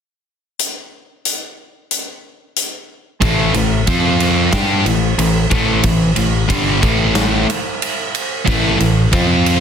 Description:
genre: hard rock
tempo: 92 BPM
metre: 4/4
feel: straight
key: A minor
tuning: A4 = 440 Hz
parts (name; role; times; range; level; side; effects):
- huge arena drum kit; drums; 0.6-9.6 s; hi-hat, kick drum, ride cymbal, snare drum; -18 LUFS; equal; none
- sludgy distorted guitar; riff; 3.2-9.6 s; G2 to G4; -15 LUFS; equal; overdrive
- fingered electric bass; bass; 3.2-9.6 s; G1 to G2; -19 LUFS; equal; none
room: light reverb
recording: dense, heavily limited modern master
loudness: -14 LUFS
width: side -7 dB against mid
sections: 0.6-3.2 A section; 3.2-9.6 B section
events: none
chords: 0.6 N.C.; 3.2 A5; 3.9 F5; 4.5 A5

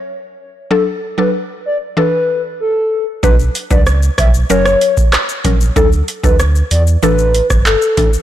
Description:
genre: dancehall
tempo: 95 BPM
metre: 4/4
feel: straight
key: B minor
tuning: A4 = 440 Hz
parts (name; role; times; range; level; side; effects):
- mallet-like synth pluck; accompaniment; 0.0-8.1 s; E3 to B4; -17 LUFS; equal; chorus, sidechain pumping
- hollow clarinet-like synth lead; melody; 0.7-8.1 s; A4 to E5; -16 LUFS; left 2 dB; chorus, digital delay
- sub bass with octave; bass; 3.2-8.1 s; F#1 to E2; -14 LUFS; right 1 dB; none
- booming analog drum machine; drums; 3.2-8.2 s; handclaps, hi-hat, kick drum, rim click, shaker; -14 LUFS; right 1 dB; none
room: light reverb, digital ambience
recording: blown-out, overdriven recording, overdrive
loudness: -11 LUFS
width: side -12 dB against mid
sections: 0.0-3.2 A section; 3.2-8.2 B section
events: none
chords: 0.0 F#; 0.7 D; 2.0 Asus4; 3.2 Bm; 4.5 F#; 5.8 D; 7.0 Asus4

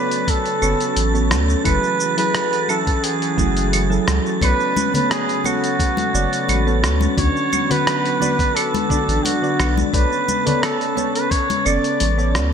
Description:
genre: sunset chillout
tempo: 87 BPM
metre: 4/4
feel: straight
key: B dorian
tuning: A4 = 440 Hz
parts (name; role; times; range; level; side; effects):
- warm flugelhorn; melody; 0.0-12.3 s; F#4 to D5; -21 LUFS; right 1 dB; ping-pong delay, shimmer reverb
- soft electric-piano-like synth keys; accompaniment; 0.0-12.5 s; D3 to A5; -25 LUFS; moving between left 4 dB and right 3 dB; chorus, auto-pan, digital delay, shimmer reverb
- lush unison pad; sustained chords; 0.0-12.5 s; C#3 to F#4; -27 LUFS; right 1 dB; chorus
- concert harp; arpeggios; 0.0-12.5 s; G#3 to D5; -27 LUFS; equal; digital delay, shimmer reverb
- wind-like tuned noise texture; texture; 0.0-12.5 s; A6; -30 LUFS; right 4 dB; built-in reverb, lush chorus, shimmer reverb
- dusty soul sampler-style drum kit; drums; 0.1-12.5 s; claves, hi-hat, rim click, shaker; -24 LUFS; right 1 dB; gated reverb
- electronic kick drum; drums; 0.3-11.5 s; none; -21 LUFS; equal; none
- warm sub bass; bass; 0.6-12.5 s; F#1 to D2; -20 LUFS; equal; none
- congas; percussion; 4.8-12.1 s; none; -27 LUFS; left 6 dB; none
room: moderate plate reverb, RT60 2.3 s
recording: bright 1980s-style digital production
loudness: -16 LUFS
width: side -7 dB against mid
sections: 0.0-12.5 A section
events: none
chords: 0.0 Bm9; 1.7 F#m9; 4.4 Bm9; 7.2 D6; 9.9 Bm9

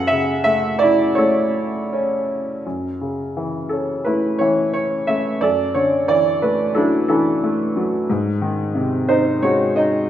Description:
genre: classical, lyrical solo piano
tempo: 80-92 BPM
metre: 4/4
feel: rubato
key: F# minor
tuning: A4 = 436 Hz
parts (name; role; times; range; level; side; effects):
- clear upright piano; solo; 0.0-10.1 s; F#2 to F#5; -17 LUFS; equal; none
room: wet recital hall reverb, RT60 1.4 s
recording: recorded in a church or concert hall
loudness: -17 LUFS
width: side -11 dB against mid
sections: 0.0-2.7 A section; 2.7-10.1 B section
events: none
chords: 0.0 F#m7; 5.4 Dadd9/F#; 8.1 G#7

